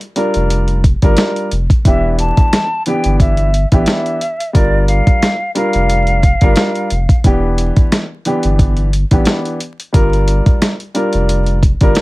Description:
hip hop, boom-bap hip-hop; 89 BPM; 4/4; swing 55% on 16ths; A4 = 440 Hz
dusty soul sampler-style drum kit; drums; 0.0-12.0 s; hi-hat, kick drum, snare drum; -12 LUFS; equal
dark grand piano; accompaniment; 0.2-12.0 s; E3 to Bb4; -17 LUFS; equal; cassette tape, high-pass filter, low-pass filter
saturated sub bass; bass; 0.4-11.9 s; E1 to A1; -15 LUFS; equal
mellow hollow concert flute; melody; 1.9-7.2 s; D5 to A5; -18 LUFS; equal; high-pass filter, low-pass filter
light reverb; vinyl crackle; -11 LUFS; side -20 dB against mid
0.0-12.0 A section
0.0 Gm7; 1.9 Em7; 4.5 Gm7; 7.2 Em7; 9.9 Gm7
0.50 1.18 | 1.85 2.52 3.20 3.87 | 4.55 5.22 5.90 6.57 | 7.24 7.92 8.59 9.27 | 9.94 10.62 11.29 11.96

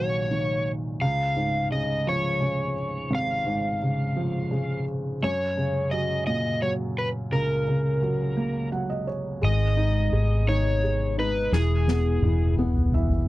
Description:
six-eight pop ballad; 57 BPM (dotted quarters); 6/8; straight; A4 = 439 Hz
overdriven slide guitar; melody; 0.0-12.5 s; G#4 to E#5; -27 LUFS; equal
felt-muted upright piano; accompaniment; 0.0-13.3 s; G#1 to F#5; -27 LUFS; equal
fingerpicked steel-string acoustic guitar; arpeggios; 9.4-13.3 s; G#2 to G#4; -33 LUFS; left 7 dB
vintage muted fingered electric bass; bass; 9.4-13.3 s; E1 to G#1; -23 LUFS; equal
soft-mallet drum kit; drums; 11.5-13.3 s; snare drum, toms; -26 LUFS; equal
light reverb; dry, close 1970s-style studio recording; -23 LUFS; side -17 dB against mid
0.0-9.4 A section; 9.4-13.3 B section
felt piano fill 8.4-9.4, 12.6-13.3; drum fill 11.5-13.3
0.0 D#m7; 1.0 C#; 5.2 F#; 9.4 G#m; 11.5 E
| 1.00 2.06 | 3.11 4.16 | 5.22 6.27 | 7.32 8.37 | 9.43 10.48 | 11.53 12.58

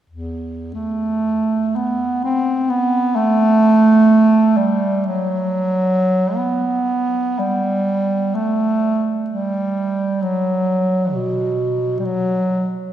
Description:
classical, free, expressive piece for unaccompanied bass clarinet; 39-69 BPM; 3/4; rubato; A4 = 439 Hz
warm bass clarinet; solo; 0.1-12.7 s; E2 to C4; -16 LUFS; right 1 dB
wet church reverb, RT60 3.2 s; heard from further back in the room; -15 LUFS; side -11 dB against mid
0.1-6.4 A section; 6.4-12.9 B section
| 0.11 1.27 2.22 | 3.14 4.07 5.07 | 6.37 7.39 8.35 | 9.30 10.23 11.16 | 12.07

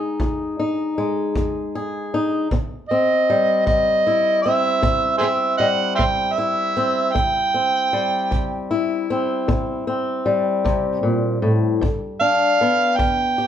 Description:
acoustic country blues, solo or duo; 52 BPM (dotted quarters); 12/8; straight; A4 = 440 Hz
fingerpicked swing-style acoustic guitar; accompaniment; 0.0-13.5 s; F2 to Ab4; -21 LUFS; left 2 dB
kick drum; drums; 0.2-13.2 s; -25 LUFS; equal
overdriven harmonica; melody; 2.9-13.5 s; Ab4 to G5; -18 LUFS; right 2 dB
light reverb; band playing live in one room; -17 LUFS; side -9 dB against mid
0.0-13.5 A section
0.0 Fm7; 2.5 C; 11.8 G
0.19 1.35 | 2.51 3.67 4.83 6.00 | 7.16 8.32 9.49 10.66 | 11.82 12.99

